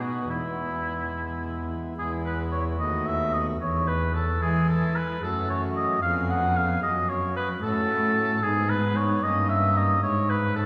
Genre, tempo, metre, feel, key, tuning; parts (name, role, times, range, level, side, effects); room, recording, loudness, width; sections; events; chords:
classical, baroque-style sonata movement with continuo; 74 BPM (dotted quarters); 6/8; straight; E major; A4 = 439 Hz
warm oboe; melody; 0.0-10.7 s; E4 to F#5; -29 LUFS; equal
pipe organ, cornet; accompaniment; 0.0-10.7 s; D#2 to G#4; -33 LUFS; equal
warm cello; bass; 0.0-10.7 s; D#2 to E3; -31 LUFS; equal
wet church reverb, RT60 2.9 s; recorded in a church or concert hall; -26 LUFS; mono
0.0-2.0 A section; 2.0-10.7 B section
0.3 E; 2.8 B7/D#; 3.6 E; 5.2 F#m; 6.0 C#7/E#; 6.8 F#m; 8.4 G#m; 9.2 D#7/G; 10.0 G#m